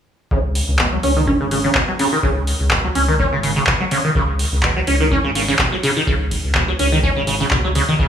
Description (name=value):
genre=acid house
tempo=125 BPM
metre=4/4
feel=swing 54% on 16ths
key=unclear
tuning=A4 = 440 Hz
part: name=liquid acid bass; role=riff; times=0.3-8.1 s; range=B2 to C#4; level=-18 LUFS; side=equal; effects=phaser, overdrive, lush chorus, tape echo
part: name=round analog bass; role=bass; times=0.3-8.1 s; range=G#1 to C#2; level=-21 LUFS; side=equal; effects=tube saturation, sidechain pumping
part: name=electronic kick drum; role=drums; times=0.3-8.1 s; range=none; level=-22 LUFS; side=equal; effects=none
part: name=electro analog drum machine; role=drums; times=0.6-7.9 s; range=handclaps, hi-hat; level=-21 LUFS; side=equal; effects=none
room=light reverb, digital ambience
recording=dry, gritty hardware recording, studio reverb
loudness=-15 LUFS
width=side -8 dB against mid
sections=0.3-8.1 A section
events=none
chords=0.3 C#5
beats=| 0.31 0.79 1.27 1.75 | 2.23 2.71 3.19 3.67 | 4.15 4.63 5.11 5.59 | 6.07 6.55 7.03 7.51 | 7.99